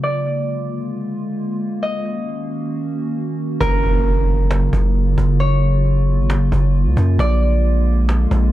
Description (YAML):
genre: hip hop, atmospheric cloud-rap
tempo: 134 BPM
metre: 4/4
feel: half-time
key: F# major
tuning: A4 = 440 Hz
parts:
  - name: concert harp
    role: melody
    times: 0.0-8.5 s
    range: A#4 to D#5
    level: -24 LUFS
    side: equal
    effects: low-pass filter, tape echo
  - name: warbly tape-like pad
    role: sustained chords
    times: 0.0-8.5 s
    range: C#3 to F#4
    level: -22 LUFS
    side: left 1 dB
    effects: chorus, built-in reverb, low-pass filter
  - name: long sustained 808-style bass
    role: bass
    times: 3.6-8.5 s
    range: F#1 to F#2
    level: -16 LUFS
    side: equal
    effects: none
  - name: cajon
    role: drums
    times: 3.6-8.4 s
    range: none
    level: -26 LUFS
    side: equal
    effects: none
  - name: impact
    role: sound effects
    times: 3.6-5.4 s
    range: none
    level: -29 LUFS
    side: right 2 dB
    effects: none
room: small room ambience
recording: none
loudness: -16 LUFS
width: side -14 dB against mid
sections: 0.0-3.6 A section; 3.6-8.5 B section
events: filter sweep 0.0-3.6; impact 3.6-5.4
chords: 0.0 A#7; 1.8 D#m7; 3.6 F#maj7; 7.2 A#7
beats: | 0.03 0.47 0.92 1.37 | 1.82 2.27 2.71 3.16 | 3.61 4.06 4.50 4.95 | 5.40 5.85 6.30 6.74 | 7.19 7.64 8.09